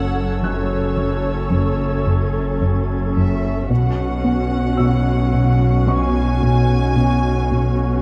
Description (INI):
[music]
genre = cinematic, suspense film score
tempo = 55 BPM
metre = 4/4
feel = straight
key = unclear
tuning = A4 = 440 Hz
[part]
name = muted chamber violin section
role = melody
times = 0.0-8.0 s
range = C#5 to G#5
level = -30 LUFS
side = equal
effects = none
[part]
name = muted chamber viola section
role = accompaniment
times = 0.0-8.0 s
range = C#4 to A4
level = -26 LUFS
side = equal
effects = none
[part]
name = plucky analog bass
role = riff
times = 0.0-7.8 s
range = F#2 to B3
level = -24 LUFS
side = equal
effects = none
[part]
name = muted chamber double bass section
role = bass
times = 0.0-8.0 s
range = F#1 to B1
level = -26 LUFS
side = equal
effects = none
[part]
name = muted studio cello section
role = bass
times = 0.0-8.0 s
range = F#2 to B2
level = -26 LUFS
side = equal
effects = none
[part]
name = saturated sub bass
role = drone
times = 0.0-8.0 s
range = F#1 to B1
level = -26 LUFS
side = equal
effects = none
[part]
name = felt-muted upright piano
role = texture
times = 0.0-8.0 s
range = E5 to F#6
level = -35 LUFS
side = equal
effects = none
[part]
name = muted chamber violin section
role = texture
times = 0.0-3.1 s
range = E6 to G#6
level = -39 LUFS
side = equal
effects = none
[sound]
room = wet recital hall reverb, RT60 1.7 s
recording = dark, warm production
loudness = -18 LUFS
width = mono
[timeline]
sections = 0.0-8.0 A section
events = none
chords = 0.0 F#m; 3.7 Bsus2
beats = 0.43 1.52 2.61 | 3.70 4.79 5.88 6.97